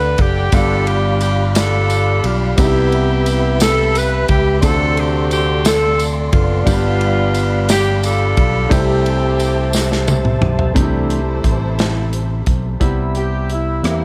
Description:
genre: slow gospel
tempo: 59 BPM (dotted quarters)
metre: 6/8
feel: straight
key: C major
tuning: A4 = 439 Hz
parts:
  - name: warm saxophone section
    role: melody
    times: 0.0-10.1, 13.2-14.0 s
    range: G3 to B4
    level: -21 LUFS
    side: equal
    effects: none
  - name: bright grand piano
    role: accompaniment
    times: 0.0-14.0 s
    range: G2 to F#5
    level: -25 LUFS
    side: equal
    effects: none
  - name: mellow tonewheel organ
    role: sustained chords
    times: 0.0-14.0 s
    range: E3 to C6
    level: -25 LUFS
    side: equal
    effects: slow rotary speaker
  - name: fingered electric bass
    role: bass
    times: 0.0-14.0 s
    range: F#1 to E2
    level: -20 LUFS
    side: equal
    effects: none
  - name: modern studio drum kit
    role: drums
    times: 0.2-14.0 s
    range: hi-hat, kick drum, ride cymbal, rim click, snare drum, toms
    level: -22 LUFS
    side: equal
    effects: none
  - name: tambourine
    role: percussion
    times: 0.5-10.4 s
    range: none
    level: -30 LUFS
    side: equal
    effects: none
  - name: dark studio string section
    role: sustained chords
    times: 10.8-12.8 s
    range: E4 to C5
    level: -30 LUFS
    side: equal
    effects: none
  - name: growling alto saxophone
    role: melody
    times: 13.2-14.0 s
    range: E4 to G4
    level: -30 LUFS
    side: equal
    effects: none
room: small room reverb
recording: none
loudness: -16 LUFS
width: mono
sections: 0.0-10.8 A section; 10.8-12.8 B section; 12.8-14.0 C section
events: drum fill 9.7-10.8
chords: 0.0 D7; 0.5 G7; 2.6 Cmaj7; 4.6 D7; 6.7 G7; 8.7 C6; 12.8 Cmaj7

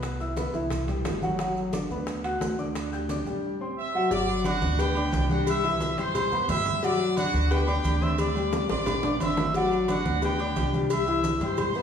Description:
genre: latin, salsa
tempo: 177 BPM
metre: 4/4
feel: straight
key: G major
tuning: A4 = 440 Hz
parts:
  - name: warm concert grand piano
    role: accompaniment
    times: 0.0-11.8 s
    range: E3 to G6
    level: -28 LUFS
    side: left 1 dB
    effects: none
  - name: upright bass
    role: bass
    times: 0.0-11.8 s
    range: G1 to G2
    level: -31 LUFS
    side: equal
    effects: none
  - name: bongos and cowbell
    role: percussion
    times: 0.0-11.7 s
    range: none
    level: -34 LUFS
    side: left 4 dB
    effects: none
  - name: congas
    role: percussion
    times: 0.0-11.8 s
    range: none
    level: -33 LUFS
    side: equal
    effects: none
  - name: maracas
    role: percussion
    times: 0.0-11.8 s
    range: none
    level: -46 LUFS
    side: right 4 dB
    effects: none
  - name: timbales and agogo bells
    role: percussion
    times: 0.0-11.7 s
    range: none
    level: -35 LUFS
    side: right 3 dB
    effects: none
  - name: bright trumpet section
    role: melody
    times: 3.8-11.8 s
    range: F#4 to E6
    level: -29 LUFS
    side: right 1 dB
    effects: none
room: wet recital hall reverb, RT60 1.6 s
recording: recorded in a church or concert hall, studio reverb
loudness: -24 LUFS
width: side -8 dB against mid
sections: 0.0-4.1 A section; 4.1-11.8 B section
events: drum fill 8.5-9.5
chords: 0.0 Cmaj7; 1.4 Gmaj7; 2.8 D7sus4; 4.1 Gmaj7; 5.5 Cmaj7; 6.8 Gmaj7; 8.2 D7sus4; 9.5 Gmaj7; 10.9 Cmaj7

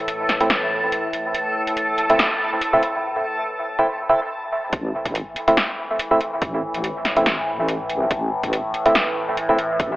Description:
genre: deep dubstep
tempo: 142 BPM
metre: 4/4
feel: swing 55% on 16ths, half-time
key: A minor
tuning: A4 = 439 Hz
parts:
  - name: overtone-sweeping drone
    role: sustained chords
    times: 0.0-10.0 s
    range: A2 to E3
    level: -27 LUFS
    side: equal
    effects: chorus, built-in reverb, phaser
  - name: backwards swelling texture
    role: texture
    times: 0.0-3.0 s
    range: A3 to A4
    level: -25 LUFS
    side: equal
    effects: built-in reverb
  - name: deep house drum kit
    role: drums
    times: 0.1-9.9 s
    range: hi-hat, snare drum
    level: -22 LUFS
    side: equal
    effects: overdrive, small room ambience
  - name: percussive organ stab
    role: stabs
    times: 0.4-9.6 s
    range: A3 to E4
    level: -21 LUFS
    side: right 1 dB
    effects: chorus, dub echo
  - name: deep soft wobble bass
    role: bass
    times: 4.7-10.0 s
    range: A1 to C2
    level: -27 LUFS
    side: equal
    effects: chorus
  - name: electronic kick drum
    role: drums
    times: 4.7-9.9 s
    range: none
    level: -25 LUFS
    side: equal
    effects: overdrive, small room ambience
room: wet spring reverb, RT60 1.9 s, digital ambience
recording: high-pass filter, telephone sound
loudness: -18 LUFS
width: side -18 dB against mid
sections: 0.0-4.7 A section; 4.7-10.0 B section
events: build-up 0.0-4.7; filter sweep 0.0-4.7; break 3.0-4.7; drop 4.7-10.0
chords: 0.0 Am

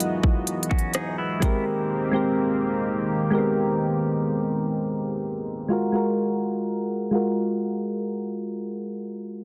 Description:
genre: contemporary R&B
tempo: 63 BPM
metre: 4/4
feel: straight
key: Gb lydian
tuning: A4 = 439 Hz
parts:
  - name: soft electric-piano-like synth keys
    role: accompaniment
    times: 0.0-9.4 s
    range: F#3 to Bb4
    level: -27 LUFS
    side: equal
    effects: chorus, low-pass filter
  - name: chorused pulse-width pad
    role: sustained chords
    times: 0.0-5.7 s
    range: Eb3 to Eb5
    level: -31 LUFS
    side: equal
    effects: low-pass filter
  - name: trap drum kit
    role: drums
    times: 0.0-1.6 s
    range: hi-hat, kick drum, rim click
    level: -25 LUFS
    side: equal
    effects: overdrive
  - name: direct-recorded clean electric guitar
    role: arpeggios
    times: 0.7-1.6 s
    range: B3 to G#4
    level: -36 LUFS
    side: equal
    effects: phaser, low-pass filter, digital delay
room: light reverb, digital ambience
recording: dense, heavily limited modern master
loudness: -25 LUFS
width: mono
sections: 0.0-9.4 A section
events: filter sweep 0.0-9.4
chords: 0.0 Emaj9; 1.4 Abmaj9; 5.7 Gbmaj9

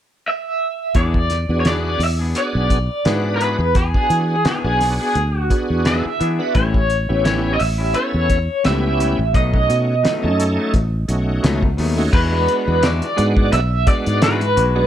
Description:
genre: straight-eighth soul blues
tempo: 86 BPM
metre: 4/4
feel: swing 55% on 16ths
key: E mixolydian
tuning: A4 = 440 Hz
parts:
  - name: raw garage guitar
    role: melody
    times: 0.3-14.9 s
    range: G#4 to E5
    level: -20 LUFS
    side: equal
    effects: overdrive, tremolo
  - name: cloth-damped thuddy drum kit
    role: drums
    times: 0.9-14.7 s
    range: crash cymbal, hi-hat, kick drum, snare drum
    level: -20 LUFS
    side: equal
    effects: none
  - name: electric guitar through a small old amp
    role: stabs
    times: 1.0-14.8 s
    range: A2 to G#4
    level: -26 LUFS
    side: left 5 dB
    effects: none
  - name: fingered electric bass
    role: bass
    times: 1.0-14.9 s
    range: A1 to E3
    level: -19 LUFS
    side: equal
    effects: none
  - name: bright tonewheel organ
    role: accompaniment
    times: 1.5-14.9 s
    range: G#3 to B4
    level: -24 LUFS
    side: right 2 dB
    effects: slow rotary speaker, overdrive, chorus vibrato
room: light reverb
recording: none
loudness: -15 LUFS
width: side -10 dB against mid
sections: 1.0-12.1 A section; 12.1-14.9 B section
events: none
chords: 0.0 N.C.; 1.0 E7; 6.6 A7; 9.3 B7; 12.1 E9

